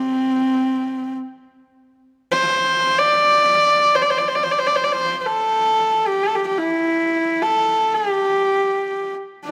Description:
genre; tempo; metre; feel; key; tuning
mongolian traditional, Mongolian folk; free time; none; none; C gong mode; A4 = 440 Hz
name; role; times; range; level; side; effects
bright horsehead fiddle; solo; 0.0-9.5 s; C4 to D5+22c; -19 LUFS; equal; none
room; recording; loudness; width
moderate concert hall reverb, RT60 2.2 s; close, detailed microphones; -19 LUFS; mono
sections
0.0-2.0 A section; 2.0-9.5 A section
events
none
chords
none

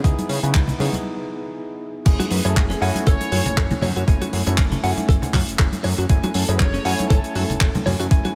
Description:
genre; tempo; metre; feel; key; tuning
nu-disco, nu disco; 119 BPM; 4/4; swing 55% on 16ths; F# dorian; A4 = 440 Hz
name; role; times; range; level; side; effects
bell-like tine electric piano; accompaniment; 0.0-8.3 s; A3 to G#5; -30 LUFS; equal; tape echo
fat analog bass; bass; 0.0-8.2 s; F#1 to C#3; -25 LUFS; equal; none
damped 70s drum kit; drums; 0.0-8.3 s; crash cymbal, handclaps, hi-hat; -30 LUFS; equal; none
electronic kick drum; drums; 0.0-8.2 s; none; -19 LUFS; equal; overdrive
congas; percussion; 0.2-8.3 s; none; -30 LUFS; equal; none
direct-recorded clean electric guitar; riff; 2.2-8.3 s; C#4 to F#5; -31 LUFS; equal; lush chorus
dark studio violin section; melody; 2.3-7.9 s; F#4 to C#5; -34 LUFS; equal; tape echo
room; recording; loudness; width
light reverb, small room reverb; none; -20 LUFS; mono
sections
0.0-2.1 A section; 2.1-8.3 B section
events
break 1.0-2.1; drop 2.1-8.3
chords
0.0 C#m7; 2.1 F#m9

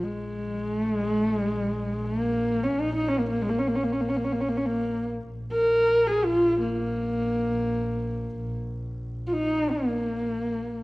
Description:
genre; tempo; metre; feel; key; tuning
mongolian traditional; 82 BPM; 4/4; straight; Bb yu mode; A4 = 440 Hz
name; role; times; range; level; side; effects
dark horsehead fiddle; melody; 0.0-10.8 s; Ab3 to Bb4; -24 LUFS; equal; none
dark double bass; drone; 0.0-10.8 s; Bb1; -33 LUFS; equal; none
room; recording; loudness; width
moderate recital hall reverb, RT60 1.7 s; worn, warbling old tape, cassette tape, warbly pitch drift; -24 LUFS; side -21 dB against mid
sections
0.0-10.8 A section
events
none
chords
none

